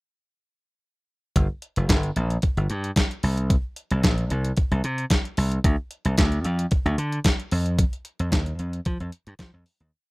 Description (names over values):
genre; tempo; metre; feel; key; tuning
early-eighties boogie funk; 112 BPM; 4/4; straight; G minor; A4 = 440 Hz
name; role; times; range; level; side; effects
slap bass; bass; 1.4-9.9 s; F1 to F3; -23 LUFS; equal; none
crisp 8-bit digital drum machine; drums; 1.4-9.9 s; hi-hat, kick drum, snare drum; -22 LUFS; equal; none
room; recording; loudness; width
little or no reverb; rough home demo mix; -22 LUFS; side -24 dB against mid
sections
1.4-9.9 verse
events
fade-out 7.8-9.9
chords
none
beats
| 1.36 1.89 2.43 2.96 | 3.50 4.04 4.57 5.11 | 5.64 6.18 6.71 7.25 | 7.79 8.32 8.86 9.39